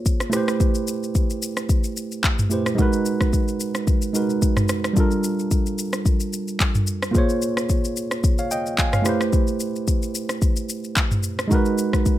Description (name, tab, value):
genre	amapiano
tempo	110 BPM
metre	4/4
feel	swing 55% on 16ths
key	unclear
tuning	A4 = 441 Hz
part	tine electric piano	accompaniment	0.0-12.2 s	G3 to Ab5	-23 LUFS	right 2 dB	none
part	afro-pop drum kit	drums	0.1-12.2 s	handclaps, kick drum, rim click, shaker, toms	-21 LUFS	left 1 dB	none
room	little or no reverb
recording	none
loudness	-19 LUFS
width	side -14 dB against mid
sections	0.0-12.2 A section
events	none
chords	0.3 Am9; 2.8 Abm9; 5.0 Gm9; 7.1 Bbm9; 9.1 Am9; 11.5 Abm9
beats	0.06 | 0.60 1.15 1.69 2.24 | 2.78 3.33 3.88 4.42 | 4.97 5.51 6.06 6.60 | 7.15 7.69 8.24 8.78 | 9.33 9.88 10.42 10.97 | 11.51 12.06